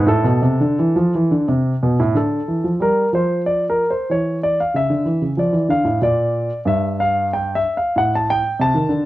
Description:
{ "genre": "classical, baroque-style suite movement for grand piano", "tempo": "84-98 BPM", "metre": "3/4", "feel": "rubato", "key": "D minor", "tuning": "A4 = 440 Hz", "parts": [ { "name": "warm grand piano", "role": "solo", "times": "0.0-9.1 s", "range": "G2 to A5", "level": "-16 LUFS", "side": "equal", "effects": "none" } ], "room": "moderate studio reverb, RT60 0.8 s", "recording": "worn, warbling old tape, cassette tape, warbly pitch drift", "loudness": "-16 LUFS", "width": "side -16 dB against mid", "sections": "0.0-2.1 A section; 2.1-9.1 A section", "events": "none", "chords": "0.1 Am; 2.1 Dm; 4.1 C#m; 5.4 Dm; 6.0 Gm; 8.0 D5/A" }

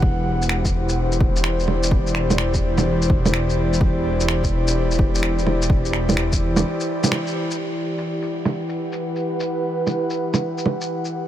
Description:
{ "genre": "future garage", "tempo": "127 BPM", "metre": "4/4", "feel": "swing 66% on 16ths", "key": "E minor", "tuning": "A4 = 440 Hz", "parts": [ { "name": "airy breathy pad", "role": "sustained chords", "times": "0.0-11.3 s", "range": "E3 to F#5", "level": "-23 LUFS", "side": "equal", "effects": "chorus, vintage 12-bit sampler grit, sidechain pumping" }, { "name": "dark detuned saw bass", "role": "bass", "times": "0.0-6.6 s", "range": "E1", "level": "-22 LUFS", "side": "equal", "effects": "sidechain pumping" }, { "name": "electronic kick drum", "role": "drums", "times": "0.0-6.4 s", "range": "none", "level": "-21 LUFS", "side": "equal", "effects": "overdrive" }, { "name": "electronic shaker, finger snaps and bongos", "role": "drums", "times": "0.4-11.1 s", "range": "none", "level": "-24 LUFS", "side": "right 2 dB", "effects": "low-pass filter on perc, low-pass filter on snare, low-pass filter on room" } ], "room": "light reverb", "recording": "none", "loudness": "-18 LUFS", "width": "side -11 dB against mid", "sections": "0.0-7.6 A section; 7.6-11.3 B section", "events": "break 6.6-7.6; band accent 7.1", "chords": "0.0 Cadd9/E; 7.6 Emadd9" }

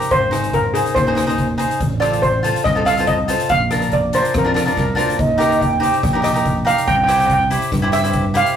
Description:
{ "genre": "calypso", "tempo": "142 BPM", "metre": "4/4", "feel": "swing 54% on 16ths", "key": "unclear", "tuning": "A4 = 440 Hz", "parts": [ { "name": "steel pan", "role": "melody", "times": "0.0-8.6 s", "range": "Ab4 to G5", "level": "-18 LUFS", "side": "right 1 dB", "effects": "none" }, { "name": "cavaquinho", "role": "accompaniment", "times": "0.0-8.6 s", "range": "D4 to C5", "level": "-20 LUFS", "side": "left 1 dB", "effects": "none" }, { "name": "street-band drum kit", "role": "drums", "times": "0.0-8.6 s", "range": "hi-hat, kick drum, rim click", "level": "-22 LUFS", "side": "equal", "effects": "none" }, { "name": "fingered electric bass", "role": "bass", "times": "0.1-8.4 s", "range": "Ab1 to G2", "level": "-23 LUFS", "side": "equal", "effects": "none" }, { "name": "mellow silver concert flute", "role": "second line", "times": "4.8-6.1 s", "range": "Bb4 to G5", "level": "-20 LUFS", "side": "right 3 dB", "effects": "none" } ], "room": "moderate small room ambience, RT60 0.5 s", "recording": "rough rehearsal-room recording, warm saturation", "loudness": "-14 LUFS", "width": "side -9 dB against mid", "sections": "0.0-8.6 A section", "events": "steel pan solo 0.0-8.6", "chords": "0.1 Ab; 1.8 F7/A; 3.5 Bbadd9; 5.2 Eb; 6.9 C" }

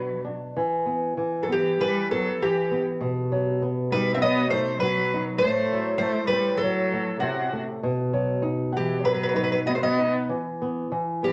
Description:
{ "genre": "fado-style ballad", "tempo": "99 BPM", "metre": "4/4", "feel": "rubato", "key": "E harmonic minor", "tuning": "A4 = 444 Hz", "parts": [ { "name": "fingerpicked twelve-string acoustic guitar", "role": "melody", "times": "0.0-11.3 s", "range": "F#4 to E5", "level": "-27 LUFS", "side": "equal", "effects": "none" }, { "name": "rich cello", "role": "second line", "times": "0.0-11.3 s", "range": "C3 to C4", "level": "-32 LUFS", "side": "equal", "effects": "none" }, { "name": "flamenco guitar", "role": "accompaniment", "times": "0.0-11.3 s", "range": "A2 to F#5", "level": "-29 LUFS", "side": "equal", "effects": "none" } ], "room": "wet studio reverb, RT60 0.8 s", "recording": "none", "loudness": "-25 LUFS", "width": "mono", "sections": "0.6-11.3 A section", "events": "none", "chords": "0.0 Bm; 0.6 E5; 3.0 B; 5.4 F#dim/A; 7.8 B; 10.3 E5" }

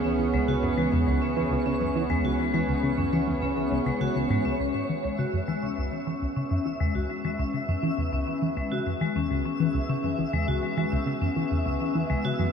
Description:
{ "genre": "ambient, sequencer-driven space music", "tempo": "102 BPM", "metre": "4/4", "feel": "straight", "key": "C# minor", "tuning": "A4 = 440 Hz", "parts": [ { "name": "evolving wavetable pad", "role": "sustained chords", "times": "0.0-12.5 s", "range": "E3 to B4", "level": "-30 LUFS", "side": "right 2 dB", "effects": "chorus, built-in reverb" }, { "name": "vibraphone with hard mallets", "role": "arpeggios", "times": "0.0-12.3 s", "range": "G#3 to F#4", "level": "-30 LUFS", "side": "left 4 dB", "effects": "auto-pan, low-pass filter, analog delay" }, { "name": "fat analog bass", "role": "bass", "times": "0.0-4.6 s", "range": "C#2", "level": "-36 LUFS", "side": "equal", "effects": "none" }, { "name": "twinkling granular texture", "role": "texture", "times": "0.0-12.5 s", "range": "C#5 to E5", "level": "-36 LUFS", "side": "equal", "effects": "built-in reverb, ensemble chorus" }, { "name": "tight sequenced synth", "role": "riff", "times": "0.2-12.5 s", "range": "C#2 to E3", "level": "-28 LUFS", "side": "equal", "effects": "chorus, phaser, analog delay" } ], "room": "moderate huge ambient reverb, RT60 8.3 s", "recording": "dreamy mix soaked in reverb, cassette tape", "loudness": "-24 LUFS", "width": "side -7 dB against mid", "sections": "0.0-4.6 A section; 4.6-12.5 B section", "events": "fade-in on ambient pad 4.6-12.5; filter sweep on synth arpeggio sound 4.6-12.5; filter sweep on vibraphone 4.6-12.5", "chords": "0.0 C#m7" }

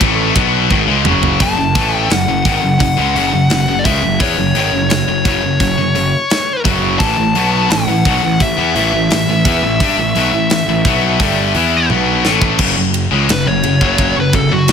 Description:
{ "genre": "heavy metal", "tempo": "86 BPM", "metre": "4/4", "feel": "straight", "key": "F# minor", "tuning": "A4 = 440 Hz", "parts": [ { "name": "high-gain distorted guitar", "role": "riff", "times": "0.0-14.7 s", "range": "F#2 to E4", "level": "-17 LUFS", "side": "left 11 dB", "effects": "distortion" }, { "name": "tight distorted guitar", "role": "riff", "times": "0.0-14.7 s", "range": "F#2 to E4", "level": "-19 LUFS", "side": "right 13 dB", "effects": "distortion" }, { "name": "fuzz picked electric bass", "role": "bass", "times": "0.0-14.7 s", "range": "F#1 to G2", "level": "-19 LUFS", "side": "right 1 dB", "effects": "overdrive" }, { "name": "tight metal drum kit", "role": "drums", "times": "0.0-14.7 s", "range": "crash cymbal, hi-hat, kick drum, ride cymbal, snare drum, toms", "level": "-18 LUFS", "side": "equal", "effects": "none" }, { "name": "high-gain lead guitar", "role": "melody", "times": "1.4-14.7 s", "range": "F#4 to A5", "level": "-18 LUFS", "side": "left 2 dB", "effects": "distortion, digital delay" } ], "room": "studio ambience", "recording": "none", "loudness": "-11 LUFS", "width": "side -7 dB against mid", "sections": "0.0-1.4 A section; 1.4-12.6 B section; 12.6-14.7 C section", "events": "drum fill 0.7-1.4, 11.9-12.6; lead electric guitar solo 12.6-14.7", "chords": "0.0 F#m; 7.0 A5; 12.6 F#5" }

